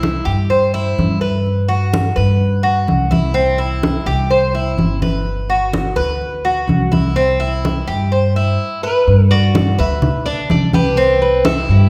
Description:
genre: latin, Cuban son and guajira.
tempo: 126 BPM.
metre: 4/4.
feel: straight.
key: G major.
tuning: A4 = 440 Hz.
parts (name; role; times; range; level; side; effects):
Cuban tres; arpeggios; 0.0-11.9 s; C4 to C5; -21 LUFS; equal; none.
upright bass; bass; 0.0-11.9 s; G1 to G2; -19 LUFS; equal; none.
congas; percussion; 0.0-11.9 s; none; -22 LUFS; equal; none.
nylon-string guitar; melody; 8.8-11.9 s; G4 to E5; -20 LUFS; equal; none.
room: wet recital hall reverb, RT60 1.4 s.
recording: recorded in a church or concert hall.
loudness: -16 LUFS.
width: mono.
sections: 0.0-9.1 A section; 9.1-11.9 B section.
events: none.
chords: 0.0 Cmaj7; 1.4 Gmaj7; 3.4 Cmaj7; 5.3 Gmaj7; 7.2 Cmaj7; 9.1 Gmaj7; 11.0 Cmaj7.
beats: 0.02 0.49 0.97 | 1.45 1.92 2.40 2.88 | 3.35 3.83 4.30 4.78 | 5.26 5.73 6.21 6.69 | 7.17 7.64 8.12 8.59 | 9.07 9.55 10.02 10.50 | 10.97 11.45.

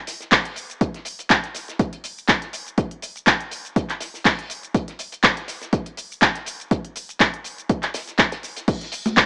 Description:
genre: house.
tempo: 122 BPM.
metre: 4/4.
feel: swing 55% on 16ths.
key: none.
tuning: none.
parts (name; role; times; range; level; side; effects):
damped 70s drum kit; drums; 0.1-9.3 s; hi-hat, snare drum; -35 LUFS; equal; high-pass filter on hats, small room reverb, high-pass filter on snare, high-pass filter on room.
deep house drum kit; drums; 0.1-9.3 s; crash cymbal, handclaps, hi-hat, shaker; -20 LUFS; equal; small room reverb.
electronic kick drum; drums; 0.3-9.3 s; none; -20 LUFS; equal; small room reverb.
congas; percussion; 9.1 s; none; -23 LUFS; equal; none.
room: small room ambience.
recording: dry, gritty hardware recording, small speaker sound.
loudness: -20 LUFS.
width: side -29 dB against mid.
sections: 0.0-9.3 A section.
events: none.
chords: none.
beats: 0.32 | 0.81 1.30 1.79 2.29 | 2.78 3.27 3.76 4.25 | 4.75 5.24 5.73 6.22 | 6.71 7.20 7.70 8.19 | 8.68 9.17.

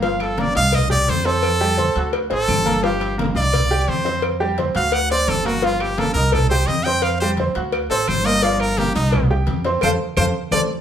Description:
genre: latin, salsa.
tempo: 172 BPM.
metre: 4/4.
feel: straight.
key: G minor.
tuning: A4 = 440 Hz.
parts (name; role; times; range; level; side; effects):
brilliant trumpet; melody; 0.0-10.6 s; Eb4 to G5; -21 LUFS; equal; none.
bright upright piano; accompaniment; 0.0-10.6 s; F3 to G6; -23 LUFS; right 1 dB; none.
upright bass; bass; 0.0-10.7 s; G1 to F2; -22 LUFS; equal; none.
congas; percussion; 0.0-10.6 s; none; -27 LUFS; left 1 dB; none.
cowbell; percussion; 0.0-10.6 s; none; -27 LUFS; left 3 dB; none.
claves; percussion; 0.2-10.6 s; none; -31 LUFS; right 4 dB; none.
room: wet studio reverb, RT60 0.7 s.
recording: band playing live in one room.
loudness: -16 LUFS.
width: side -9 dB against mid.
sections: 0.0-10.8 A section.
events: trumpet solo 0.0-10.8; band accent 9.8-10.8; drum fill 10.5.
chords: 0.0 Gm7; 0.7 Cm; 1.4 Fadd9; 2.1 D7; 2.8 Gm7; 3.5 Cm; 4.2 Fsus2; 4.9 D7; 5.6 Gm7; 6.3 Cm; 7.0 Fsus2; 7.7 D7; 8.4 Gm7; 9.1 Cm; 9.8 F.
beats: | 0.04 0.39 0.73 1.08 | 1.44 1.78 2.13 2.48 | 2.83 3.18 3.53 3.88 | 4.23 4.58 4.93 5.28 | 5.63 5.98 6.33 6.68 | 7.03 7.38 7.73 8.08 | 8.43 8.78 9.13 9.47 | 9.82 10.17 10.52.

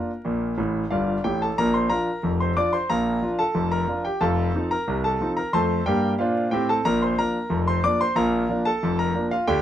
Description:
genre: ragtime piano.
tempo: 91 BPM.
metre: 2/4.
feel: straight.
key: Bb major.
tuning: A4 = 439 Hz.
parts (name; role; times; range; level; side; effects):
clear concert grand piano; solo; 0.0-9.6 s; F1 to D6; -21 LUFS; equal; none.
room: light reverb.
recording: close, detailed microphones, vinyl crackle.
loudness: -21 LUFS.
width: side -11 dB against mid.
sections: 0.0-1.6 A section; 1.6-9.6 B section.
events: grand piano fill 0.6-1.6.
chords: 0.0 Bb; 4.2 F7; 6.8 Bb.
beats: | 0.24 0.91 | 1.57 2.24 | 2.90 3.55 | 4.21 4.87 | 5.53 6.18 | 6.84 7.50 | 8.16 8.81 | 9.47.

